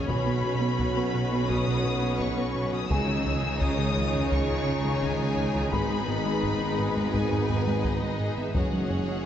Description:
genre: cinematic, hybrid orchestral and electronic film score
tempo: 85 BPM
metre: 4/4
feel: straight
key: G# minor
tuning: A4 = 439 Hz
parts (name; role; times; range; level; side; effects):
- bright symphonic violin section; melody; 0.0-9.3 s; D#5 to E6; -35 LUFS; left 4 dB; none
- clear symphonic violin section; second line; 0.0-9.3 s; G#4 to C#5; -34 LUFS; left 3 dB; none
- rich studio viola section; accompaniment; 0.0-9.3 s; G#3 to F#4; -35 LUFS; left 2 dB; none
- bright trombone section; sustained chords; 0.0-9.3 s; C#3 to B3; -37 LUFS; right 2 dB; none
- hollow soft pad; sustained chords; 0.0-9.3 s; D#3 to C#5; -36 LUFS; left 1 dB; ensemble chorus
- warm French horn section; sustained chords; 0.0-9.3 s; B3 to G#4; -35 LUFS; left 3 dB; none
- rich symphonic cello section; bass; 0.0-9.3 s; F#2 to C#3; -34 LUFS; right 2 dB; none
- warm symphonic double bass section; bass; 0.0-9.3 s; F#1 to C#2; -34 LUFS; right 3 dB; none
- felt-muted upright piano; texture; 0.0-9.3 s; F#4 to D#6; -43 LUFS; left 2 dB; none
- soft round pluck; arpeggios; 0.1-9.2 s; C#3 to C#5; -39 LUFS; left 4 dB; none
- round analog bass; riff; 0.1-9.2 s; C#2 to B3; -32 LUFS; right 1 dB; none
- mellow tuba; bass; 0.1-9.3 s; F#1 to C#2; -34 LUFS; right 2 dB; none
- taiko ensemble; drums; 0.1-9.2 s; none; -34 LUFS; left 1 dB; none
- reverse cymbal; sound effects; 8.5-9.3 s; none; barely audible; none; none
room: moderate concert hall reverb, RT60 2.4 s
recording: nothing above 7.8 kHz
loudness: -24 LUFS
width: side -10 dB against mid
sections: 0.0-9.3 A section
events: none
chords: 0.1 Bsus2; 2.9 C#madd9; 5.7 G#m; 8.6 F#sus2

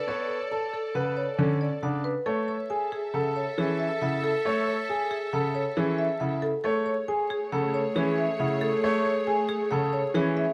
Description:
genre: classical, minimalist pattern music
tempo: 137 BPM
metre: 5/4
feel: straight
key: F# minor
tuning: A4 = 440 Hz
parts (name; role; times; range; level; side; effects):
- marimba with medium mallets; melody; 0.0-10.5 s; G#4 to A5; -32 LUFS; equal; none
- bright clarinet; second line; 0.0-10.5 s; G#4 to A4; -38 LUFS; equal; none
- rich studio string section; sustained chords; 0.0-10.5 s; A3 to E5; -39 LUFS; equal; none
- warm baby grand piano; accompaniment; 0.1-10.4 s; C#3 to B3; -32 LUFS; equal; none
- warm concert grand piano; arpeggios; 0.1-10.4 s; C#4 to C#5; -33 LUFS; equal; none
room: light reverb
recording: close, detailed microphones, vinyl crackle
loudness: -27 LUFS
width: mono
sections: 0.0-10.5 A section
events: none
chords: 0.0 Bm7; 2.3 F#m7

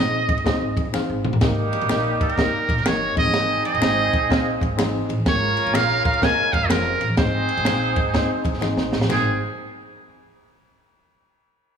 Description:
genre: uptempo 1960s-style soul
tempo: 125 BPM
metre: 4/4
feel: swing 65% on 8ths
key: Ab major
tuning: A4 = 440 Hz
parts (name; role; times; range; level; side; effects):
- trumpet with metal mute; melody; 0.0-9.4 s; Ab4 to Ab5; -23 LUFS; right 2 dB; none
- reed electric piano; accompaniment; 0.0-9.4 s; Ab2 to F5; -27 LUFS; left 3 dB; overdrive, fast tremolo
- upright bass; bass; 0.0-9.4 s; F1 to Ab2; -27 LUFS; equal; none
- compact cocktail drum kit; drums; 0.3-9.2 s; crash cymbal, kick drum, ride cymbal, snare drum, toms; -23 LUFS; right 1 dB; none
- congas; percussion; 0.5-9.4 s; none; -36 LUFS; right 1 dB; none
- finger snap; percussion; 0.9-9.4 s; none; -37 LUFS; left 6 dB; none
- dark horn section; second line; 1.4-9.3 s; Eb3 to Bb4; -27 LUFS; right 2 dB; slapback echo
room: light reverb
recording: small room ambience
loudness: -18 LUFS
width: side -7 dB against mid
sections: 0.0-9.1 A section; 9.1-11.0 B section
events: drum fill 0.9-1.4, 8.6-9.1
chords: 0.0 Ab; 1.4 Eb; 3.1 Ab; 5.3 Bbm7; 7.2 Ab

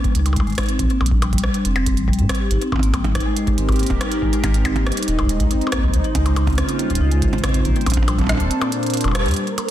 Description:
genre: IDM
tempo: 140 BPM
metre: 4/4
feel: straight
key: unclear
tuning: A4 = 440 Hz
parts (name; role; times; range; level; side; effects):
- vibraphone with soft mallets; arpeggios; 0.0-9.3 s; G3 to G4; -24 LUFS; left 2 dB; low-pass filter, digital delay
- electronic kick drum; drums; 0.0-8.5 s; none; -22 LUFS; equal; overdrive
- glitchy drum kit; drums; 0.0-9.7 s; hi-hat, percussion blips, rim click; -25 LUFS; right 1 dB; ping-pong delay
- warm sub bass; bass; 0.1-9.3 s; Eb1 to Bb2; -20 LUFS; equal; none
- phased analog pad; sustained chords; 3.1-9.7 s; Bb2 to C5; -25 LUFS; right 1 dB; phaser, chorus
- flickering grainy texture; texture; 9.5-9.7 s; Bb4; -28 LUFS; right 4 dB; built-in reverb
room: light reverb, digital ambience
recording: dense, heavily limited modern master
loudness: -16 LUFS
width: side -12 dB against mid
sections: 0.0-9.4 A section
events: kick drops out 8.5-9.4; band accent 9.2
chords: 0.0 Dbsus2; 0.8 Bb5; 2.5 Abmaj9; 5.7 Dbmaj9; 7.7 Bbmaj9

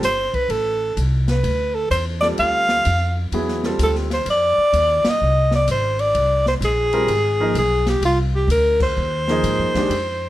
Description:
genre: modal jazz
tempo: 128 BPM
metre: 4/4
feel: swing 66% on 8ths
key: unclear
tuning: A4 = 441 Hz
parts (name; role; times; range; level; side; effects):
- breathy alto saxophone; melody; 0.0-10.3 s; F4 to F5; -18 LUFS; equal; none
- warm grand piano; accompaniment; 0.0-4.1, 6.9-9.9 s; Eb3 to Bb4; -23 LUFS; right 1 dB; none
- upright bass; bass; 0.0-10.3 s; G1 to Ab2; -22 LUFS; equal; none
- open jazz drum kit; drums; 0.0-10.1 s; crash cymbal, hi-hat, kick drum, ride cymbal, snare drum; -29 LUFS; left 1 dB; none
room: light reverb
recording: none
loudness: -16 LUFS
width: side -14 dB against mid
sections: 0.0-10.3 A section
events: band accent 5.0, 8.7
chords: 0.0 Dm9; 4.3 Fm7

